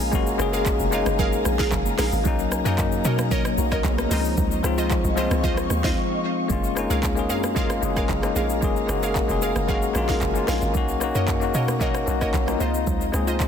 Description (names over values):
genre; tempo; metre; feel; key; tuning
amapiano; 113 BPM; 4/4; straight; F# major; A4 = 440 Hz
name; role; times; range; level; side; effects
bell-like tine electric piano; accompaniment; 0.0-13.5 s; E#3 to A#4; -25 LUFS; left 6 dB; medium stereo tremolo
ethereal airy pad; sustained chords; 0.0-13.5 s; A#3 to C#6; -30 LUFS; right 1 dB; ensemble chorus, built-in reverb, sidechain pumping
hollow log drum bass; bass; 0.0-13.5 s; E#1 to B2; -26 LUFS; right 1 dB; none
afro-pop drum kit; drums; 0.0-13.5 s; handclaps, hi-hat, kick drum, rim click, shaker, snare drum; -26 LUFS; equal; none
congas; percussion; 0.1-13.4 s; none; -34 LUFS; right 13 dB; none
glassy wavetable pluck; stabs; 0.5-13.4 s; E#4 to E#5; -30 LUFS; right 3 dB; chorus, digital delay
room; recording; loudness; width
light reverb, digital ambience; dense, heavily limited modern master; -20 LUFS; side -8 dB against mid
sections
0.0-6.5 A section; 6.5-13.5 B section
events
drop 0.0-6.5; break 6.0-6.5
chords
0.0 F#maj9; 2.3 Bmaj9; 4.1 C#maj9; 6.5 F#maj9; 10.7 Bmaj9; 12.6 C#maj9